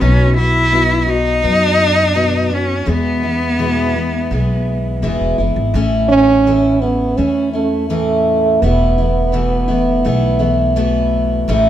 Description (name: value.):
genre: acoustic folk duo or small band.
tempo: 84 BPM.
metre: 4/4.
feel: straight.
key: A major from 5.7 s.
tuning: A4 = 440 Hz.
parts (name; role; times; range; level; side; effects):
rich cello; melody; 0.0-5.0 s; B3 to E4; -16 LUFS; left 1 dB; none.
picked steel-string acoustic guitar; accompaniment; 0.0-11.7 s; E2 to F#4; -17 LUFS; left 2 dB; none.
upright bass; bass; 0.0-11.7 s; D#1 to F#2; -18 LUFS; equal; none.
warm French horn; second line; 6.1-11.1 s; A3 to C#4; -16 LUFS; right 4 dB; none.
room: light reverb.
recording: minimal, uncompressed stereo recording.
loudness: -13 LUFS.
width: side -11 dB against mid.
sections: 0.0-5.7 A section; 5.7-11.7 B section.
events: French horn solo 5.7-11.7.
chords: 0.0 B; 2.9 E; 5.7 A; 8.6 Esus4.